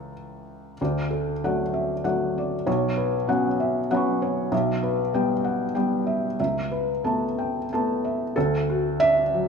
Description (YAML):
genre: neoclassical minimalist piano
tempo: 95 BPM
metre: 3/4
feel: uneven beats, rubato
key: D major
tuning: A4 = 439 Hz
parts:
  - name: felt-muted upright piano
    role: solo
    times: 0.0-9.5 s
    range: B1 to C#6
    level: -22 LUFS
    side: equal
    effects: none
room: moderate scoring stage reverb, RT60 1.8 s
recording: none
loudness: -22 LUFS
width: side -6 dB against mid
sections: 0.8-8.3 A section; 8.3-9.5 B section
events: none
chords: 0.0 A/C#; 0.8 D; 2.7 Bsus2; 4.5 Em/B; 6.4 Aadd9/C#; 8.3 D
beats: 0.15 | 0.80 1.42 2.04 | 2.67 3.29 3.91 | 4.52 5.13 5.75 | 6.39 7.04 7.70 | 8.35 9.01